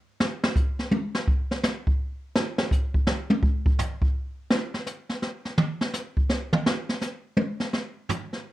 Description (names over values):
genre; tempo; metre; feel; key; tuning
jazz; 167 BPM; 3/4; swing 64% on 8ths; none; none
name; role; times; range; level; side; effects
jazz brush drum kit; drums; 0.2-8.4 s; hi-hat, kick drum, snare drum, toms; -23 LUFS; equal; none
room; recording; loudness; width
moderate studio reverb, RT60 0.5 s; worn, warbling old tape, cassette tape, warbly pitch drift; -24 LUFS; side -15 dB against mid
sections
0.0-6.7 A section; 6.7-8.5 A section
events
drum solo 0.0-6.7, 6.7-8.5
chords
none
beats
| 0.20 0.56 0.92 | 1.28 1.64 1.99 | 2.35 2.71 3.07 | 3.43 3.79 4.14 | 4.50 4.86 5.22 | 5.58 5.93 6.29 | 6.65 7.01 7.37 | 7.73 8.09